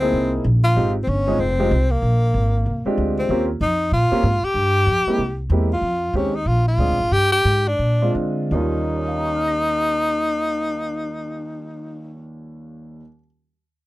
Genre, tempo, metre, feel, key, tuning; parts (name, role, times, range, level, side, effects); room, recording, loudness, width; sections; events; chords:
jazz, small-group swing and bop; 161-190 BPM; 4/4; swing 61% on 8ths; Eb mixolydian; A4 = 440 Hz
breathy tenor saxophone; melody; 0.0-12.3 s; Bb3 to G4; -21 LUFS; left 1 dB
warm grand piano; accompaniment; 0.0-13.2 s; Eb2 to Bb6; -24 LUFS; right 1 dB
upright bass; bass; 0.0-12.9 s; F1 to D3; -20 LUFS; equal
little or no reverb; dry, close 1970s-style studio recording; -17 LUFS; side -18 dB against mid
0.0-5.8 A section; 5.8-8.5 B section; 8.5-11.5 C section
slowing down 5.8-8.5
0.1 C7alt; 0.8 Fm7; 2.0 Bb13; 3.3 Eb13; 4.6 Fmadd9; 5.2 C7b13; 5.8 Fm7; 6.5 Bb7; 7.1 G5; 7.8 Bb7; 8.5 Eb9